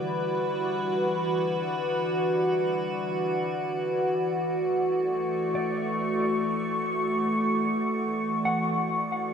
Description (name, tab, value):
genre	ambient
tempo	free time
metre	none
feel	none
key	D major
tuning	A4 = 440 Hz
part	evolving wavetable pad	sustained chords	0.0-9.3 s	D3 to C#6	-25 LUFS	equal	chorus, built-in reverb
part	organ-like drone	drone	0.0-9.3 s	E3 to D5	-36 LUFS	equal	ensemble chorus, built-in reverb
part	mellow electric guitar	arpeggios	5.5-9.3 s	D5 to F#5	-33 LUFS	equal	ping-pong delay
room	wet lush hall reverb, RT60 2.7 s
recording	dreamy mix soaked in reverb, cassette tape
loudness	-25 LUFS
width	side -7 dB against mid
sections	0.0-9.3 A section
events	none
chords	0.0 Gmaj7/D; 3.4 Dmaj7